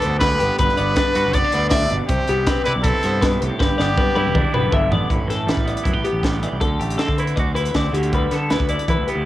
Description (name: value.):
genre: math rock and midwest emo.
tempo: 159 BPM.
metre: 4/4.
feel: straight.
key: G major.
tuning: A4 = 440 Hz.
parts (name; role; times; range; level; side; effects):
brilliant trumpet; melody; 0.0-4.7 s; G4 to D5; -22 LUFS; right 1 dB; cassette tape.
twangy electric guitar; accompaniment; 0.0-9.3 s; G2 to G4; -25 LUFS; right 5 dB; cassette tape.
twelve-string electric guitar; arpeggios; 0.0-9.3 s; G4 to E5; -23 LUFS; left 4 dB; cassette tape.
fuzz fingered electric bass; bass; 0.0-9.3 s; E1 to E3; -24 LUFS; equal; overdrive.
crisp fusion drum kit; drums; 0.0-9.2 s; hi-hat, kick drum, snare drum, toms; -22 LUFS; equal; cassette tape.
room: small room ambience.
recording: home recording on cassette.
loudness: -17 LUFS.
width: side -14 dB against mid.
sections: 0.0-5.1 A section; 5.1-9.3 B section.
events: drum fill 3.6-5.1.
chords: 0.0 Gmaj7; 2.1 Cmaj7; 3.6 G6; 5.1 Am11; 7.9 G6/D.